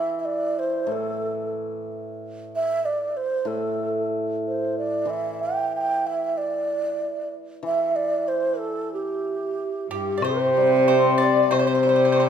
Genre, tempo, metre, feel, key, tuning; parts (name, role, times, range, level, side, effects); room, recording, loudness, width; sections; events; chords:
chinese traditional, Chinese chamber ensemble; 93 BPM; 2/4; rubato; A4 = 440 Hz
breathy mellow xiao; melody; 0.0-12.3 s; G4 to G5; -23 LUFS; right 2 dB
hammered dulcimer; accompaniment; 0.0-12.3 s; A2 to C4; -26 LUFS; left 4 dB
mellow large dizi; second line; 9.9-12.3 s; G4 to D5; -26 LUFS; left 8 dB
pipa; second line; 9.9-12.3 s; G4 to D5; -28 LUFS; right 3 dB
rich cello; second line; 9.9-12.3 s; G2 to C3; -26 LUFS; right 4 dB
woodblock; percussion; 10.2-12.3 s; -33 LUFS; left 6 dB
moderate recital hall reverb, RT60 1.8 s; minimal, uncompressed stereo recording; -21 LUFS; side -8 dB against mid
0.0-10.2 A section; 10.2-12.3 B section